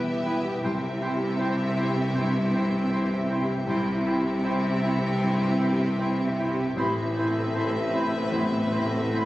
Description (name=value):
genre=cinematic, emotional film score for orchestra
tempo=78 BPM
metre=4/4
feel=rubato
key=unclear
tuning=A4 = 441 Hz
part: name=rich studio violin section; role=melody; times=0.0-9.3 s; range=E5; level=-37 LUFS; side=left 3 dB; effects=none
part: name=clear oboe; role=second line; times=0.0-9.3 s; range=B4 to C5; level=-38 LUFS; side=equal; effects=none
part: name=clear studio violin section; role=second line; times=0.0-9.3 s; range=G4 to B4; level=-39 LUFS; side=left 2 dB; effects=none
part: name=warm clarinet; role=second line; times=0.0-9.3 s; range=E4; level=-33 LUFS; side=equal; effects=none
part: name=clear grand piano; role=accompaniment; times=0.0-9.3 s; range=A1 to E5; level=-30 LUFS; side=left 1 dB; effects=none
part: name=rich studio viola section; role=accompaniment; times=0.0-9.3 s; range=B3 to C4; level=-35 LUFS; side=right 2 dB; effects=none
part: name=clear French horn section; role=sustained chords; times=0.0-9.3 s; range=C3 to B4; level=-36 LUFS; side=left 1 dB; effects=none
part: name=rich studio cello section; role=bass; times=0.0-9.3 s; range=E2 to C3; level=-29 LUFS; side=right 1 dB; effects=none
part: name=rich studio double bass section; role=bass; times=0.0-9.3 s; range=E1 to C2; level=-30 LUFS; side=equal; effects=none
part: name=small flute group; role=second line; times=0.2-9.2 s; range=G5 to B5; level=-38 LUFS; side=right 2 dB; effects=none
room=moderate scoring stage reverb, RT60 1.7 s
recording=recorded on a phone in the room, club reverb, compression, nothing above 10.7 kHz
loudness=-23 LUFS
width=side -16 dB against mid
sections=0.0-9.3 A section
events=none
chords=0.0 Em; 0.6 C; 6.8 Amadd9